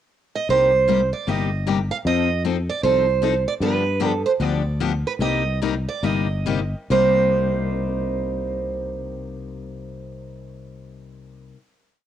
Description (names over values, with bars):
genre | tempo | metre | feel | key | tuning
acoustic string swing (jazz manouche) | 131-154 BPM | 4/4 | swing 62% on 8ths | C minor | A4 = 440 Hz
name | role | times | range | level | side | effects
picked steel-string acoustic guitar | melody | 0.4-11.5 s | B4 to F5 | -22 LUFS | right 5 dB | cassette tape
picked steel-string acoustic guitar | accompaniment | 0.5-11.6 s | C3 to A4 | -26 LUFS | left 8 dB | none
fretless electric bass | bass | 0.5-11.5 s | G1 to G2 | -25 LUFS | left 1 dB | none
room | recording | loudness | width
moderate spring reverb, RT60 1.3 s, studio ambience | home recording on cassette | -19 LUFS | side -10 dB against mid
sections
0.0-0.5 pickup bar; 0.5-6.9 A section; 6.9-10.6 final chord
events
slowing down 3.6-6.9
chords
0.5 Cm7; 2.0 F7; 3.6 G7; 5.2 Cm7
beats
0.10 | 0.49 0.88 1.27 1.66 | 2.05 2.44 2.83 3.21 | 3.60 3.99 4.39 4.78 | 5.19 5.60 6.02 6.46 | 6.91 7.36 7.82 8.28 | 8.73 9.19 9.65 10.10